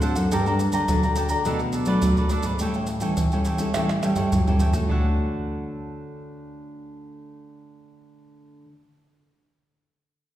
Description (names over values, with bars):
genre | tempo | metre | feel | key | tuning
samba and choro | 105 BPM | 4/4 | straight | D major | A4 = 438 Hz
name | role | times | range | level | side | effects
cavaquinho | accompaniment | 0.0-8.7 s | D4 to Bb5 | -28 LUFS | right 1 dB | none
nylon-string guitar | accompaniment | 0.0-8.7 s | F#2 to A4 | -28 LUFS | left 1 dB | none
nylon-string guitar | bass | 0.0-8.6 s | F#2 to G3 | -27 LUFS | right 1 dB | none
maracas, pandeiro, surdo and tamborim | percussion | 0.0-5.0 s | none | -25 LUFS | equal | none
room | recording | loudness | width
wet recital hall reverb, RT60 1.7 s | recorded in a church or concert hall | -20 LUFS | side -12 dB against mid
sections
0.0-4.9 A section; 4.9-7.2 B section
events
drum fill 3.7-4.9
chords
0.3 Gmadd9; 1.5 Bm7; 2.6 A7; 4.9 Dmaj7